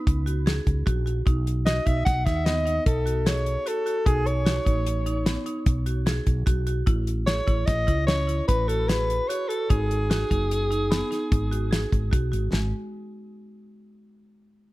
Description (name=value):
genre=progressive instrumental, band music in an uneven meter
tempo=149 BPM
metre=7/4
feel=straight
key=G# phrygian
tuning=A4 = 445 Hz
part: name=marimba with medium hard mallets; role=arpeggios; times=0.0-12.7 s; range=G#3 to G#4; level=-32 LUFS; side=right 2 dB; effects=plate reverb
part: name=woody fretless electric bass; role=bass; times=0.1-12.7 s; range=F#1 to D#2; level=-26 LUFS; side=equal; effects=none
part: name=damped 70s drum kit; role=drums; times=0.1-12.6 s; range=hi-hat, kick drum, snare drum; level=-24 LUFS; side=equal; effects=none
part: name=mellow soprano saxophone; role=melody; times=1.7-12.1 s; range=G#4 to F#5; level=-27 LUFS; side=equal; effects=plate reverb, ping-pong delay
room=light reverb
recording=none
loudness=-22 LUFS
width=side -18 dB against mid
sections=0.0-12.5 A section; 12.5-14.7 B section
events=none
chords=0.0 C#sus4; 1.3 B9; 6.9 Amaj9; 9.7 G#m7; 12.5 N.C.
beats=0.07 0.46 0.86 | 1.26 1.66 2.06 2.46 2.86 3.26 3.66 | 4.06 4.46 4.86 5.26 5.66 6.06 6.47 | 6.87 7.27 7.67 8.08 8.48 8.89 9.29 | 9.70 10.10 10.50 10.91 11.31 11.72 12.12 | 12.53